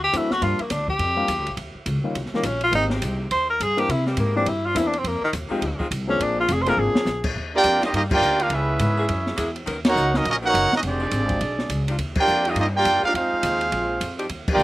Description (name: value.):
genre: jazz, big band swing.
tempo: 208 BPM.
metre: 4/4.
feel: swing 62% on 8ths.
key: Eb major.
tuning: A4 = 441 Hz.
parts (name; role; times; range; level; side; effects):
clear tenor saxophone; melody; 0.0-7.3 s; Eb3 to C5; -22 LUFS; equal; none.
upright bass; bass; 0.0-14.6 s; F1 to C3; -27 LUFS; equal; none.
warm concert grand piano; accompaniment; 0.1-7.0 s; Eb3 to Bb4; -28 LUFS; left 3 dB; none.
open jazz drum kit; drums; 0.1-14.6 s; crash cymbal, hi-hat, kick drum, ride cymbal, snare drum; -29 LUFS; equal; none.
edgy saxophone section; sustained chords; 2.9-14.3 s; D3 to A#4; -30 LUFS; left 1 dB; none.
warm trombone section; second line; 7.5-14.6 s; Eb3 to G4; -28 LUFS; right 2 dB; slapback echo.
clear trumpet section; melody; 7.6-14.6 s; Bb3 to G5; -21 LUFS; right 1 dB; none.
room: little or no reverb.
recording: recorded outdoors, with no room sound.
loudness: -20 LUFS.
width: side -17 dB against mid.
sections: 0.0-7.4 A section; 7.4-14.6 B section.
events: tenor saxophone solo 0.0-7.4; drum fill 6.8; band accent 8.1, 9.8, 12.1, 14.4.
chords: 0.4 Gm7; 1.6 Eb7; 2.7 Abmaj7; 3.9 C7; 5.0 Fm7; 6.2 Bb7; 7.4 Ebmaj9; 8.5 Dbm7; 9.1 Gb9; 9.7 Bmaj9; 10.8 Fm9; 11.4 Bm69; 12.0 Ebmaj9; 13.1 Fm7; 13.7 Bb7.